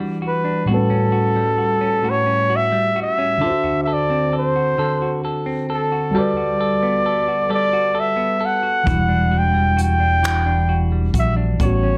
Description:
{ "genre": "slow six-eight R&B", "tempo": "44 BPM (dotted quarters)", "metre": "6/8", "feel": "straight", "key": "E dorian", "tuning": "A4 = 441 Hz", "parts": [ { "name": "semi-hollow electric guitar", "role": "second line", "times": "0.0-12.0 s", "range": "A2 to A4", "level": "-26 LUFS", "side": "equal", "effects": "none" }, { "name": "tine electric piano", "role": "accompaniment", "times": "0.0-12.0 s", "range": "A2 to F#5", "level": "-26 LUFS", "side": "equal", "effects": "phaser" }, { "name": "warm flugelhorn", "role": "melody", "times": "0.3-12.0 s", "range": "A4 to G5", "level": "-22 LUFS", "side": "equal", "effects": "slapback echo" }, { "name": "smooth synth bass", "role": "bass", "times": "8.9-12.0 s", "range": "E1 to A#1", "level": "-21 LUFS", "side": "equal", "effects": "none" }, { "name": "jazz brush drum kit", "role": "drums", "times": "8.9-11.8 s", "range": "finger snaps, hi-hat, kick drum", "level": "-25 LUFS", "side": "equal", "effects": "none" } ], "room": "light reverb", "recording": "none", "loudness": "-19 LUFS", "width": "mono", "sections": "0.0-12.0 A section", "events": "none", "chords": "0.0 Em9; 0.7 A13; 3.4 D7; 6.1 Gmaj9; 8.9 Em9" }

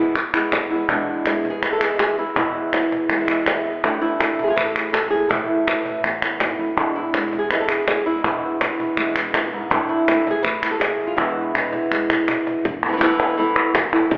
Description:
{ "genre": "flamenco", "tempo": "163 BPM", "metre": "4/4", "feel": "straight", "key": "E major", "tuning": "A4 = 440 Hz", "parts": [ { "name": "flamenco guitar", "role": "melody", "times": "0.0-14.2 s", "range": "E2 to B4", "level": "-22 LUFS", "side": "equal", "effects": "none" }, { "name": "upright bass", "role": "bass", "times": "0.0-14.2 s", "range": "E1 to E2", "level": "-37 LUFS", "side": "equal", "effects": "none" }, { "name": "palmas hand claps", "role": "percussion", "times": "0.2-14.1 s", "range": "none", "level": "-22 LUFS", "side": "equal", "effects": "none" }, { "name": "cajon", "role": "percussion", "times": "0.5-14.2 s", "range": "none", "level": "-26 LUFS", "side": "equal", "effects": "none" }, { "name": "flamenco guitar", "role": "stabs", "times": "0.9-12.6 s", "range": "B2 to E4", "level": "-25 LUFS", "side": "right 1 dB", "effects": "none" } ], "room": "wet recital hall reverb, RT60 1.6 s", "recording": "recorded in a church or concert hall, telephone sound", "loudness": "-17 LUFS", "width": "side -25 dB against mid", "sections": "0.9-12.6 A section; 12.6-14.2 B section", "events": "drum fill 11.2-12.6", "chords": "0.0 E; 3.8 Asus2; 6.8 E; 9.7 Asus2; 11.2 E; 12.6 Esus4" }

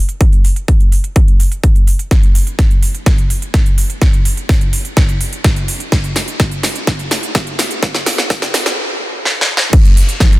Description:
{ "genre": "EDM", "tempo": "126 BPM", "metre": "4/4", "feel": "straight", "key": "none", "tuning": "none", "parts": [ { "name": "big-room dance drum kit", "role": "drums", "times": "0.1-10.4 s", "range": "crash cymbal, hi-hat, ride cymbal, snare drum", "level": "-17 LUFS", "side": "equal", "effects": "high-pass filter on hats, high-pass filter on snare, high-pass filter on cymbals" }, { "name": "electronic kick drum", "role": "drums", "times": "0.2-10.3 s", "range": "none", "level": "-11 LUFS", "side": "equal", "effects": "none" } ], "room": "digital ambience", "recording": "dense, heavily limited modern master, high-pass filter", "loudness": "-11 LUFS", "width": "side -18 dB against mid", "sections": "0.0-2.1 A section; 2.1-9.7 B section", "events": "build-up 2.1-9.7; drum fill 2.1-8.8, 9.3-9.7; filter sweep 2.1-9.7", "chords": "none" }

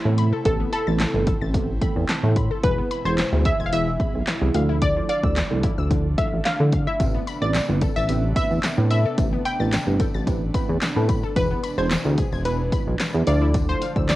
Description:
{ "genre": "dance-pop", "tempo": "110 BPM", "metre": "4/4", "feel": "straight", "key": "A minor", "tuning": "A4 = 440 Hz", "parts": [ { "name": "analog pluck", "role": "melody", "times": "0.0-14.2 s", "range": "A4 to G5", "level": "-26 LUFS", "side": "equal", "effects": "chorus, cassette tape, analog delay, plate reverb" }, { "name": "airy breathy pad", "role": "sustained chords", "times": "0.0-14.2 s", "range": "B2 to E4", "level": "-32 LUFS", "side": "equal", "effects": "chorus, sidechain pumping" }, { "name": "mellow tine electric piano", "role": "accompaniment", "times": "0.1-14.1 s", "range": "E3 to C6", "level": "-30 LUFS", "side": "right 6 dB", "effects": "sidechain pumping" }, { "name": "chorused synth bass", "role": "bass", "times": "0.1-14.1 s", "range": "E1 to D3", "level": "-22 LUFS", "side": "equal", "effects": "sidechain pumping" }, { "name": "wide unison pluck", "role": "arpeggios", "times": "0.2-14.1 s", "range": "C3 to A6", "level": "-33 LUFS", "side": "left 7 dB", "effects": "sidechain pumping, analog delay, plate reverb" }, { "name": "punchy analog drum machine", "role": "drums", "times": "0.2-14.2 s", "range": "handclaps, hi-hat, kick drum, snare drum", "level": "-24 LUFS", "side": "equal", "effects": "cassette tape" }, { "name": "tambourine", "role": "percussion", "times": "7.0-14.2 s", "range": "none", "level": "-45 LUFS", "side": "left 8 dB", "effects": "none" } ], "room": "light reverb", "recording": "home recording on cassette", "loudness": "-19 LUFS", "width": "side -16 dB against mid", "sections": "0.0-14.2 A section", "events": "tine electric piano fill 1.5-2.6", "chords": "0.0 Amadd9; 2.6 E; 4.5 Dmadd9; 7.0 Amadd9; 11.4 E; 13.3 Dmadd9" }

